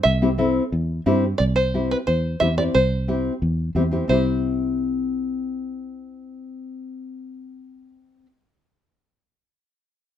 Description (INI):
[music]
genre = latin, cumbia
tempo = 178 BPM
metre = 4/4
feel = straight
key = C major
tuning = A4 = 436 Hz
[part]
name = open-back banjo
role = melody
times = 0.0-8.3 s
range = B4 to E5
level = -22 LUFS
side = right 1 dB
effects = none
[part]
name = fingered electric bass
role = bass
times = 0.1-8.3 s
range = C2 to G2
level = -23 LUFS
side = right 1 dB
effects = none
[part]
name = nylon-string guitar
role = accompaniment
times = 0.2-8.3 s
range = C4 to A4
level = -24 LUFS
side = left 4 dB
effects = none
[sound]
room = light reverb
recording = minimal, uncompressed stereo recording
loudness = -19 LUFS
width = side -10 dB against mid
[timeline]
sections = 0.0-1.4 A section; 1.4-4.1 B section; 4.1-6.8 C section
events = none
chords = 0.0 C